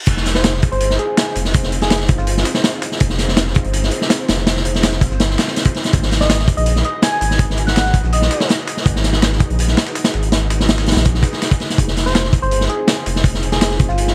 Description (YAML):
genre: drum and bass, jungle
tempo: 164 BPM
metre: 4/4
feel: straight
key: unclear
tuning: A4 = 440 Hz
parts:
  - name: saturated sub bass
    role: bass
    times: 0.1-14.1 s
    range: F1 to Bb1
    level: -21 LUFS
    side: equal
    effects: tube saturation
  - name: dusty soul sampler-style drum kit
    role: drums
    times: 0.1-14.1 s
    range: hi-hat, snare drum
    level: -31 LUFS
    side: equal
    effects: high-pass filter on hats, high-pass filter on snare
  - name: vintage drum kit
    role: drums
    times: 0.1-14.1 s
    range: crash cymbal, hi-hat, kick drum, snare drum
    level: -18 LUFS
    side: equal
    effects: none
  - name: soft struck synth lead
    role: melody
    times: 0.4-2.5, 6.2-8.5, 12.1-14.1 s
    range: F4 to Ab5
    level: -25 LUFS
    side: equal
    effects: chorus, phaser, dub echo
room: little or no reverb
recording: vinyl crackle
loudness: -16 LUFS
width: mono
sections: 0.1-14.1 A section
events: drop 0.1-14.1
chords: 0.1 Fm7; 5.9 Abm7; 11.8 Fm7